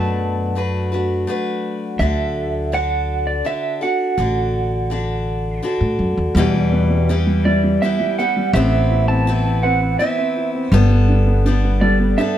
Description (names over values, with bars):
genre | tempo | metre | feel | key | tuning
acoustic folk duo or small band | 83 BPM | 3/4 | straight | unclear | A4 = 438 Hz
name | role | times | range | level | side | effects
electric guitar through a small old amp | melody | 0.0-12.4 s | D5 to A5 | -22 LUFS | right 4 dB | tremolo
picked acoustic archtop guitar | accompaniment | 0.0-12.4 s | E2 to B4 | -21 LUFS | left 2 dB | none
upright bass | bass | 0.0-12.1 s | G1 to A2 | -18 LUFS | equal | none
warm upright piano | arpeggios | 6.4-12.4 s | G3 to B4 | -21 LUFS | right 2 dB | none
room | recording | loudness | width
light reverb | close, detailed microphones | -16 LUFS | side -11 dB against mid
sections
0.0-6.4 A section; 6.4-12.4 B section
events
none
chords
0.0 Bm7; 2.0 D; 6.4 Em; 8.5 Amadd9; 10.7 Gadd9